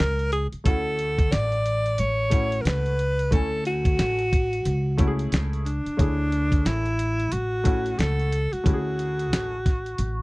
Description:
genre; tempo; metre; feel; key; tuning
hip hop, jazz-hop; 90 BPM; 4/4; swing 60% on 16ths; unclear; A4 = 440 Hz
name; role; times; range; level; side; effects
breathy alto saxophone; melody; 0.0-10.2 s; D4 to D5; -26 LUFS; equal; none
upright bass; bass; 0.0-10.2 s; A1 to D2; -26 LUFS; equal; none
dusty soul sampler-style drum kit; drums; 0.0-10.2 s; hi-hat, kick drum, snare drum; -24 LUFS; equal; none
warm upright piano; accompaniment; 0.6-9.6 s; A3 to G#5; -31 LUFS; left 2 dB; none
room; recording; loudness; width
little or no reverb; dry, close 1970s-style studio recording; -21 LUFS; side -23 dB against mid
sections
0.0-10.2 A section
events
break 0.0-0.7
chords
0.0 F#add9 (rootless); 0.7 Dmaj9

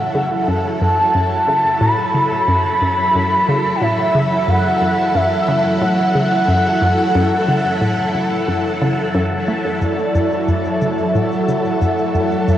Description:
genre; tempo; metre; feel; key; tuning
ambient, sequencer-driven space music; 90 BPM; 4/4; straight; F# minor; A4 = 440 Hz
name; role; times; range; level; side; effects
expressive synth lead; melody; 0.0-12.6 s; D5 to B5; -18 LUFS; equal; ensemble chorus, vintage 12-bit sampler grit, tape echo
string machine, full ensemble; sustained chords; 0.0-12.6 s; F#3 to A4; -19 LUFS; equal; phaser, ensemble chorus
hollow square pluck; riff; 0.1-12.6 s; F#2 to A3; -20 LUFS; equal; chorus, tape echo
electronic shaker and toms; percussion; 9.8-12.6 s; none; -41 LUFS; left 2 dB; none
bubbling stepped-filter texture; texture; 9.8-12.6 s; C#6; -46 LUFS; right 1 dB; none
room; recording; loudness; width
wet shimmer reverb, RT60 8.7 s; worn, warbling old tape, cassette tape, warbly pitch drift; -14 LUFS; side -11 dB against mid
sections
0.0-9.8 A section; 9.8-12.6 B section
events
filter sweep on synth arpeggio sound 9.8-12.6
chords
0.0 F#m7

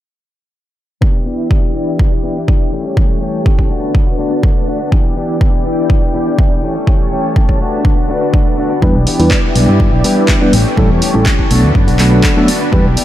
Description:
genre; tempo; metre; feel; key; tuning
filtered disco house; 123 BPM; 4/4; straight; E dorian; A4 = 440 Hz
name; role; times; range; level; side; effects
string machine, full ensemble; sustained chords; 1.0-13.0 s; D4 to A5; -19 LUFS; equal; ensemble chorus, vintage 12-bit sampler grit, sidechain pumping, low-pass filter
direct-recorded clean electric guitar; riff; 1.0-13.0 s; E3 to G4; -20 LUFS; left 3 dB; vintage 12-bit sampler grit, sidechain pumping, low-pass filter
electronic kick drum; drums; 1.0-12.8 s; none; -12 LUFS; equal; overdrive
mellow tine electric piano; accompaniment; 8.8-12.8 s; F#3 to B4; -14 LUFS; equal; phaser, sidechain pumping, low-pass filter
fingered electric bass; bass; 8.8-12.9 s; A1 to G2; -13 LUFS; equal; sidechain pumping, low-pass filter
tambourine; percussion; 8.8-13.0 s; none; barely audible; none; none
punchy analog drum machine; drums; 9.1-13.0 s; handclaps, hi-hat; -19 LUFS; equal; overdrive, sidechain pumping on hats, low-pass filter on hats, low-pass filter on snare, low-pass filter on room
room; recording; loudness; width
light reverb; none; -10 LUFS; side -13 dB against mid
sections
1.0-13.0 A section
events
filter sweep 1.0-13.0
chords
1.0 Em7; 2.7 A7; 3.7 Bm7; 4.9 Em7; 6.6 A7; 7.6 Bm7; 8.8 Em7; 10.5 A7; 11.5 Bm7

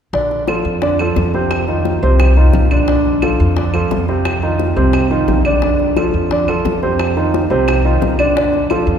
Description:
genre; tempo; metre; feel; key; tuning
Afro-Cuban jazz; 175 BPM; 4/4; straight; Bb major; A4 = 438 Hz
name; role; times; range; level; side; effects
warm upright piano; accompaniment; 0.1-9.0 s; C3 to D5; -16 LUFS; right 2 dB; none
upright bass; bass; 0.1-9.0 s; Bb1 to F2; -16 LUFS; equal; none
bongos; percussion; 0.1-8.9 s; none; -23 LUFS; left 6 dB; none
claves; percussion; 0.5-8.9 s; none; -26 LUFS; right 2 dB; none
room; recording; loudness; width
wet cathedral reverb, RT60 4.4 s; recorded in a church or concert hall; -12 LUFS; side -8 dB against mid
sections
0.1-9.0 A section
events
none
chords
0.1 Bbmaj7; 1.5 F5; 2.9 Bbmaj7; 4.3 F5; 5.6 Bbmaj7; 7.0 F5; 8.4 Bbmaj7

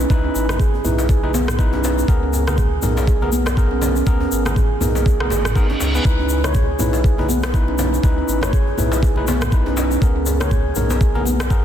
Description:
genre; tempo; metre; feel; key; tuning
afro house; 121 BPM; 4/4; swing 57% on 16ths; C# dorian; A4 = 440 Hz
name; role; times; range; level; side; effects
handpan; arpeggios; 0.0-11.3 s; B3 to C#5; -23 LUFS; right 3 dB; sidechain pumping, tape echo
overdriven tine electric piano; stabs; 0.0-11.6 s; B3 to B4; -24 LUFS; left 3 dB; sidechain pumping, tape echo
warm sub bass; bass; 0.0-11.6 s; G#1 to C#2; -22 LUFS; equal; sidechain pumping
egg shaker; percussion; 0.0-11.6 s; none; -30 LUFS; left 6 dB; none
electronic kick drum; drums; 0.1-11.6 s; none; -17 LUFS; equal; none
congas; percussion; 0.1-11.4 s; none; -29 LUFS; right 3 dB; none
djembe; percussion; 0.1-11.6 s; none; -29 LUFS; left 3 dB; none
electronic rim click; drums; 0.5-11.5 s; none; -29 LUFS; equal; none
reverse cymbal; sound effects; 5.3-6.1 s; none; -28 LUFS; right 1 dB; none
room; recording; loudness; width
light reverb, small room reverb; dense, heavily limited modern master; -15 LUFS; side -10 dB against mid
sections
0.0-11.6 A section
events
reverse cymbal 5.3-6.1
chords
0.0 C#m7; 2.1 G#madd9; 6.1 C#m7; 10.0 G#madd9

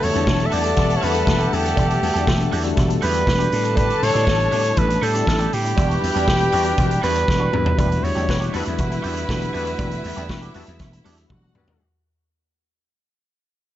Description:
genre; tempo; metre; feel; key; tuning
disco; 120 BPM; 4/4; straight; E minor; A4 = 440 Hz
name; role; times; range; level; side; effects
warm flugelhorn; melody; 0.0-11.3 s; G4 to E5; -23 LUFS; right 2 dB; none
warm studio violin section; second line; 0.0-11.8 s; E4 to A5; -28 LUFS; left 4 dB; slapback echo
electric guitar at the edge of break-up; accompaniment; 0.0-11.7 s; G3 to A4; -32 LUFS; right 8 dB; wah
mellow tine electric piano; accompaniment; 0.0-11.8 s; F#3 to A4; -28 LUFS; left 4 dB; medium stereo tremolo
dark studio string section; sustained chords; 0.0-11.8 s; D3 to F#5; -30 LUFS; right 1 dB; none
mellow horn section; stabs; 0.0-11.9 s; E3 to E5; -31 LUFS; left 8 dB; none
vintage slap bass; bass; 0.0-11.7 s; E1 to A2; -23 LUFS; equal; none
vintage drum kit; drums; 0.0-11.8 s; hi-hat, kick drum, snare drum, toms; -24 LUFS; equal; none
room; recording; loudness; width
small room ambience; nothing above 7.7 kHz; -17 LUFS; side -12 dB against mid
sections
0.0-7.8 A section; 7.8-11.8 B section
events
drum fill 7.3-7.8, 11.3-11.8; fade-out 7.8-11.8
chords
0.0 Em11; 3.5 A7sus4; 5.8 Em9; 7.8 Em11

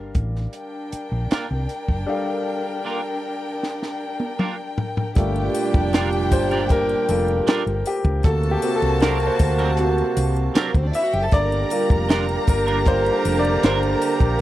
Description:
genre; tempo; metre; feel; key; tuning
lush 1970s-style soul; 78 BPM; 4/4; straight; G minor; A4 = 441 Hz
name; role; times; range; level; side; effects
clear concert grand piano; accompaniment; 0.0-14.4 s; G3 to F5; -24 LUFS; left 2 dB; none
hollow-body short-scale fingered electric bass; bass; 0.0-14.4 s; F1 to D2; -23 LUFS; equal; none
compact cocktail drum kit; drums; 0.1-14.4 s; hi-hat, kick drum, snare drum, toms; -20 LUFS; equal; none
warm studio violin section; second line; 0.5-14.4 s; Bb3 to Bb5; -28 LUFS; left 2 dB; none
clean electric guitar; riff; 1.3-13.8 s; F#3 to Bb4; -27 LUFS; right 5 dB; lush chorus
mellow horn section; stabs; 5.2-14.4 s; Bb2 to G4; -25 LUFS; right 5 dB; tape echo
triangle; percussion; 5.2-14.4 s; none; -39 LUFS; left 9 dB; none
room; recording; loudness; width
little or no reverb; dry, close 1970s-style studio recording; -18 LUFS; side -14 dB against mid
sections
0.0-5.2 A section; 5.2-14.4 B section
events
drum fill 3.6-5.2; grand piano solo 5.2-14.4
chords
0.0 Gm7; 8.2 D7b13; 11.3 Gm7

